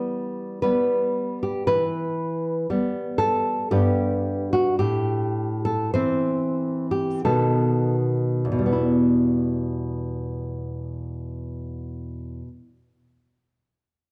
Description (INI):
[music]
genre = romantic piece for solo classical guitar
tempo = 38-61 BPM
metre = 3/4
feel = rubato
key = E minor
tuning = A4 = 438 Hz
[part]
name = nylon-string guitar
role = solo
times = 0.0-12.7 s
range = E2 to C5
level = -24 LUFS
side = equal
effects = none
[sound]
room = moderate recital hall reverb, RT60 1.5 s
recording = dark, warm production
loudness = -24 LUFS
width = mono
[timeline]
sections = 0.0-1.7 A section; 1.7-8.7 B section; 8.7-13.0 C section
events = slowing down 0.1-8.7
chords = 0.0 Em; 3.7 G; 4.8 Am; 7.2 B7; 8.7 Em